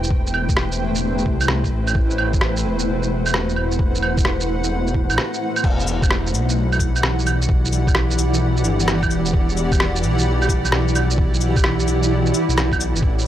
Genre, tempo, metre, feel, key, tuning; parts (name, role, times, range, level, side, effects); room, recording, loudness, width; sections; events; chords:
future garage; 130 BPM; 4/4; swing 67% on 16ths; E minor; A4 = 438 Hz
granular cloud pad; sustained chords; 0.0-13.3 s; E3 to G5; -22 LUFS; equal; built-in reverb, sidechain pumping
swelling detuned saw bass; bass; 0.0-13.3 s; E1 to C2; -21 LUFS; equal; sidechain pumping
lo-fi sampler-style drum kit; drums; 0.0-13.2 s; cabasa, claves, crash cymbal, rim click, shaker; -22 LUFS; right 1 dB; studio reverb
electronic kick drum; drums; 0.1-13.1 s; -20 LUFS; equal; studio reverb
digital ambience; dry, gritty hardware recording, transformer saturation; -17 LUFS; side -12 dB against mid
0.0-5.6 A section; 5.6-13.3 B section
0.0 Am9; 5.6 Em7